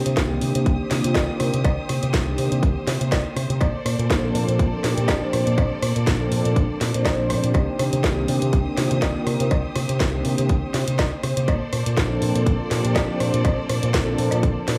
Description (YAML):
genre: nu-disco, nu disco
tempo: 122 BPM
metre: 4/4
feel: swing 55% on 16ths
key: C dorian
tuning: A4 = 444 Hz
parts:
  - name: clear symphonic string section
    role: sustained chords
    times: 0.0-14.8 s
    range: Bb3 to Eb6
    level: -33 LUFS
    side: equal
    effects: sidechain pumping
  - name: fingered electric bass with an envelope filter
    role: bass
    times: 0.0-14.8 s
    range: Bb1 to C3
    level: -26 LUFS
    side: equal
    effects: none
  - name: house drum kit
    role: drums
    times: 0.1-14.8 s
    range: hi-hat, rim click, snare drum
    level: -29 LUFS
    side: equal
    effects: none
  - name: warm analog pad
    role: accompaniment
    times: 0.2-14.4 s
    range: Eb3 to C5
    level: -28 LUFS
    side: equal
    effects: chorus, sidechain pumping, dub echo
  - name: electronic kick drum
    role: drums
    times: 0.2-14.5 s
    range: none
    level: -25 LUFS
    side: equal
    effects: none
  - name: cowbell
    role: percussion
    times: 1.1-14.4 s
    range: none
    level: -31 LUFS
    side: equal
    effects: none
room: light reverb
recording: small room ambience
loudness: -22 LUFS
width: mono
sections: 0.0-14.8 A section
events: filter sweep on analog synth pad 0.0-14.8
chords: 0.0 Cm7; 3.6 Bbmaj9; 7.5 Cm7; 11.5 Bbmaj9